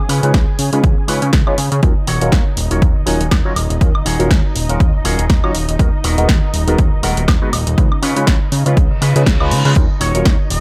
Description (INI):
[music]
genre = filtered disco house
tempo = 121 BPM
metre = 4/4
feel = swing 56% on 16ths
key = Eb minor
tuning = A4 = 442 Hz
[part]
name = dark symphonic string section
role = sustained chords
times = 0.0-10.6 s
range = Eb4 to Ab5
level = -31 LUFS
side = equal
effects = sidechain pumping, low-pass filter
[part]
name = fat analog bass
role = bass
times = 0.0-10.6 s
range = Eb1 to Db3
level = -20 LUFS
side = equal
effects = sidechain pumping, low-pass filter
[part]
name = electric guitar with an envelope filter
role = riff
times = 0.1-10.3 s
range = Cb4 to Db5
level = -28 LUFS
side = equal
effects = sidechain pumping, low-pass filter
[part]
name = punchy analog drum machine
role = drums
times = 0.1-10.6 s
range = hi-hat, snare drum, woodblock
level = -24 LUFS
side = equal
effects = overdrive, sidechain pumping on hats, sidechain pumping on perc
[part]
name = barky tine electric piano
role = accompaniment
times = 0.2-10.2 s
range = Gb3 to Db5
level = -24 LUFS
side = equal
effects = phaser, sidechain pumping, low-pass filter
[part]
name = electronic kick drum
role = drums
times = 0.3-10.4 s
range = none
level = -16 LUFS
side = equal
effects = overdrive
[part]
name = reverse cymbal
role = sound effects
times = 9.0-9.8 s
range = none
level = -28 LUFS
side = equal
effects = none
[part]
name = clear trumpet section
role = melody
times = 10.0-10.6 s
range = Db5 to Eb5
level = -27 LUFS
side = equal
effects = sidechain pumping, low-pass filter
[sound]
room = little or no reverb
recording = none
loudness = -15 LUFS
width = mono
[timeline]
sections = 0.0-10.6 A section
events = reverse cymbal 9.0-9.8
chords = 0.0 Db7; 1.8 Ebm7; 5.8 Abm9/Eb; 7.8 Db7; 9.8 Ebm7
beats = 0.34 0.84 1.33 | 1.83 2.32 2.82 3.32 | 3.81 4.31 4.80 5.30 | 5.79 6.29 6.79 7.28 | 7.78 8.28 8.77 9.27 | 9.76 10.26